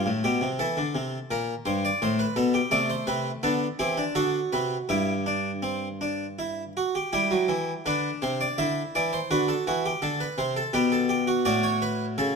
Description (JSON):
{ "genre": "classical, baroque-style 3-part fugue for harpsichord", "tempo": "83 BPM", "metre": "3/4", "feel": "straight", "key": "G major", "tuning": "A4 = 440 Hz", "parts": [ { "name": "harpsichord", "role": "solo", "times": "0.0-12.4 s", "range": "G2 to E5", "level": "-24 LUFS", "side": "equal", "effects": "none" } ], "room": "moderate recital hall reverb, RT60 1.4 s", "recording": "close, detailed microphones", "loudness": "-24 LUFS", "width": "side -5 dB against mid", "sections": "0.0-7.1 A section; 7.1-12.4 B section", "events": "none", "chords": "0.0 G9; 0.6 C7; 2.0 Am9; 2.7 Am/C; 3.4 G/D; 4.2 D7; 4.9 G5; 7.1 G; 8.6 Dsus2; 9.3 D7; 10.8 G/B; 11.5 D/A" }